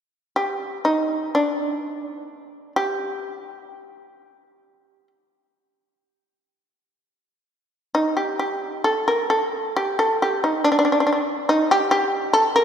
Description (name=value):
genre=japanese traditional, Japanese chamber music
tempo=free time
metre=none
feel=none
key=G hirajoshi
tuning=A4 = 441 Hz
part: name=shamisen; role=solo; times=0.4-12.6 s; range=D4 to Bb4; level=-19 LUFS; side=equal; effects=none
room=wet church reverb, RT60 3.0 s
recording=recorded in a church or concert hall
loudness=-19 LUFS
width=side -8 dB against mid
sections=0.0-7.9 A section; 7.9-12.6 B section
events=none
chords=none